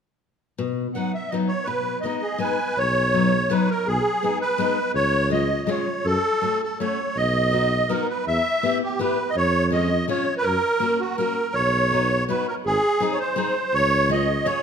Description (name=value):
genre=alpine folk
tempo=164 BPM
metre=3/4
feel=straight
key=B major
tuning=A4 = 440 Hz
part: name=picked steel-string acoustic guitar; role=accompaniment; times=0.6-14.6 s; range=B2 to G#4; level=-27 LUFS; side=left 3 dB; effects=none
part: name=musette accordion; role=melody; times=0.9-14.6 s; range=F#4 to G#5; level=-22 LUFS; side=right 1 dB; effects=none
part: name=mellow tuba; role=bass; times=2.8-14.4 s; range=G#1 to F#2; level=-25 LUFS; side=equal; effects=none
room=moderate recital hall reverb, RT60 1.7 s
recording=none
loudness=-20 LUFS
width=side -7 dB against mid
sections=0.6-2.8 A section; 2.8-14.6 B section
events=none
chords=0.6 B; 1.7 G#m/B; 2.8 B; 3.9 G#m/B; 5.0 C#; 6.1 F#m; 7.2 B; 8.3 Em; 9.4 C#/E#; 10.4 F#; 11.5 B; 12.6 G#; 13.7 C#